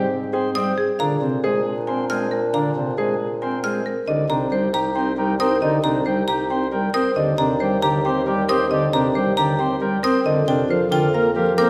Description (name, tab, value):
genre	classical, minimalist pattern music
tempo	272 BPM (eighths)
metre	7/8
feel	straight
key	unclear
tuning	A4 = 440 Hz
part	marimba with medium hard mallets	melody	0.0-11.7 s	Ab4 to Ab5	-28 LUFS	equal	none
part	mellow clarinet	second line	0.0-11.7 s	C4 to Bb4	-30 LUFS	equal	none
part	chamber organ, principal chorus	accompaniment	0.0-11.7 s	C3 to C4	-25 LUFS	equal	none
part	clear baby grand piano	arpeggios	0.0-11.7 s	C4 to Bb4	-29 LUFS	equal	none
part	warm bassoon	bass	0.0-11.7 s	C2 to Bb2	-28 LUFS	equal	none
part	xylophone with wooden mallets	arpeggios	0.6-11.7 s	G5 to F6	-28 LUFS	equal	none
room	wet recital hall reverb, RT60 1.5 s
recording	vinyl crackle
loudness	-21 LUFS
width	mono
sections	0.0-4.1 A section; 4.1-11.7 B section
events	none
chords	0.0 Abmaj7; 1.0 Bb7; 4.1 Cm7; 7.2 Eb6; 10.3 Fsus4